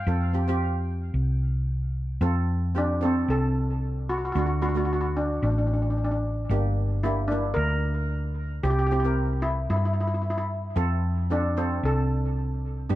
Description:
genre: calypso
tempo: 112 BPM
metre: 4/4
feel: straight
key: F major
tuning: A4 = 440 Hz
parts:
  - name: steel pan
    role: melody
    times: 0.0-12.9 s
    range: C4 to F5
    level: -29 LUFS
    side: equal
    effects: plate reverb, tape echo
  - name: hollow-body short-scale fingered electric bass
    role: bass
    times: 0.0-13.0 s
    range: G1 to G2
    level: -25 LUFS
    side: equal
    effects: none
  - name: steel pan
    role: accompaniment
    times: 0.1-13.0 s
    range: A3 to Bb4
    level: -31 LUFS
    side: right 2 dB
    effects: none
room: moderate studio ambience, RT60 0.5 s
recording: dark, warm production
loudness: -23 LUFS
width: side -15 dB against mid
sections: 0.0-2.2 A section; 2.2-13.0 A section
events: none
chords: 0.1 F5; 2.2 F; 4.4 D; 6.5 Gm; 8.6 C; 10.8 F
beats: | 0.07 0.61 1.14 1.68 | 2.21 2.75 3.29 3.82 | 4.36 4.89 5.43 5.96 | 6.50 7.03 7.57 8.10 | 8.64 9.17 9.70 10.24 | 10.77 11.30 11.84 12.37 | 12.90

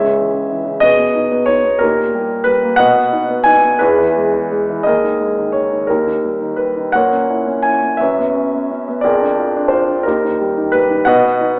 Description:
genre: classical, lyrical solo piano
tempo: 56-62 BPM (dotted quarters)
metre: 6/8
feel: rubato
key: unclear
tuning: A4 = 439 Hz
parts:
  - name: warm grand piano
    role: solo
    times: 0.0-11.6 s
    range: C#2 to G#5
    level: -15 LUFS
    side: equal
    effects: none
room: moderate concert hall reverb, RT60 2.3 s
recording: recorded in a church or concert hall, telephone sound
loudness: -15 LUFS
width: mono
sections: 0.0-11.6 A section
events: none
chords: 0.0 C#m; 0.8 G#m/B; 1.8 D#/A#; 2.8 B; 3.8 E; 4.9 D#sus4; 5.9 D#; 6.9 A#dim; 8.0 F#sus4; 9.0 A#7/E#; 10.1 D#; 11.1 B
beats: | 0.83 1.82 | 2.80 3.81 | 4.86 5.89 | 6.94 8.00 | 9.04 10.06 | 11.07

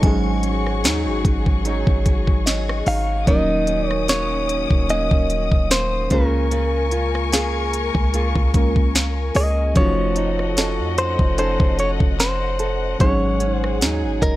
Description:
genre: contemporary R&B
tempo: 74 BPM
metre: 4/4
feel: swing 54% on 16ths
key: Bb minor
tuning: A4 = 440 Hz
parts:
  - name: mellow FM electric piano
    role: accompaniment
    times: 0.0-14.4 s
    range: F3 to Bb4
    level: -26 LUFS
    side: left 1 dB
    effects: chorus
  - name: warm studio string section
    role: sustained chords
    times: 0.0-14.4 s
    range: Db4 to Eb6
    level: -29 LUFS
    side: left 6 dB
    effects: none
  - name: nylon-string guitar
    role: arpeggios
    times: 0.0-14.4 s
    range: Ab2 to A4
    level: -27 LUFS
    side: right 3 dB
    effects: none
  - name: warm 808-style bass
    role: bass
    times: 0.0-14.4 s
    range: Eb1 to F2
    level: -23 LUFS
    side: equal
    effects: none
  - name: smooth R&B drum kit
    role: drums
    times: 0.0-14.4 s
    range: hi-hat, kick drum, rim click, snare drum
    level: -19 LUFS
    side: equal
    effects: none
  - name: glassy synth bell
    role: texture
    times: 0.0-14.4 s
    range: Eb5 to A5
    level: -34 LUFS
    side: left 1 dB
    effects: chorus, analog delay
  - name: direct-recorded clean electric guitar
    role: melody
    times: 2.9-14.4 s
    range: Bb4 to F5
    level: -23 LUFS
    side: equal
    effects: none
room: little or no reverb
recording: dry, gritty hardware recording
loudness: -17 LUFS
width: side -16 dB against mid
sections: 0.0-14.4 A section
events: none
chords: 0.0 Ab7sus4; 3.3 Ebm7; 6.1 Bbm7/Db; 9.8 F7b9b13; 13.0 Ab7sus4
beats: | 0.03 0.84 1.65 2.46 | 3.27 4.08 4.89 5.71 | 6.52 7.33 8.14 8.95 | 9.76 10.57 11.38 12.19 | 13.00 13.81

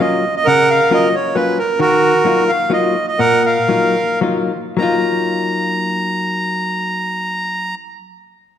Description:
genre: musette waltz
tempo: 102-134 BPM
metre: 3/4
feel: straight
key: Eb minor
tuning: A4 = 440 Hz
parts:
  - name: accordion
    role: melody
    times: 0.0-7.7 s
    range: Gb4 to Bb5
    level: -15 LUFS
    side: right 2 dB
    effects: none
  - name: hollow-body jazz guitar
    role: accompaniment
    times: 0.0-7.8 s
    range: Bb2 to F4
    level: -19 LUFS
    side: left 4 dB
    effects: none
room: wet scoring stage reverb, RT60 1.7 s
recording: none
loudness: -14 LUFS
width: side -9 dB against mid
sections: 0.0-4.8 A section; 4.8-8.3 B section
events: slowing down 1.8-4.8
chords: 0.0 Gbmaj7; 1.8 Ebmadd9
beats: 0.00 | 0.45 0.90 1.35 | 1.80 2.25 2.71 | 3.19 3.70 4.23 | 4.81 5.39 5.97 | 6.55 7.13 7.70

